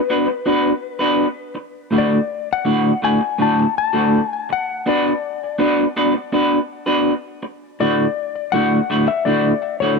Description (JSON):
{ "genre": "rock", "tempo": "82 BPM", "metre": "4/4", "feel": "straight", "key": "D major", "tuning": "A4 = 443 Hz", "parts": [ { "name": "clean lap steel guitar", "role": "melody", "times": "0.0-10.0 s", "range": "B4 to A5", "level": "-22 LUFS", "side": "left 9 dB", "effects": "tape echo" }, { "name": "electric guitar through a small old amp", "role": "riff", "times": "0.1-10.0 s", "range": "A2 to B4", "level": "-17 LUFS", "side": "equal", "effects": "harmonic tremolo" } ], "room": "light reverb", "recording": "none", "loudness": "-16 LUFS", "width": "side -4 dB against mid", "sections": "0.0-10.0 A section", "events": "none", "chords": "0.0 Bm; 1.9 D; 4.9 Bm; 7.8 D", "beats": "0.48 1.21 | 1.94 2.68 3.41 4.14 | 4.88 5.61 6.34 7.08 | 7.81 8.54 9.28" }